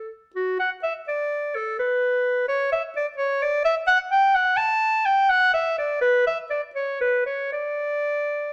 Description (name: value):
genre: classical, baroque-style fantasia for unaccompanied clarinet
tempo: 84 BPM (dotted quarters)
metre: 6/8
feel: rubato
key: D major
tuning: A4 = 440 Hz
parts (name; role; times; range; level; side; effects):
- clear clarinet; solo; 0.0-8.5 s; F#4 to A5; -23 LUFS; equal; none
room: moderate stone room reverb, RT60 1.1 s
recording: none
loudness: -23 LUFS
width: mono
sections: 0.0-8.5 A section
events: none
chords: none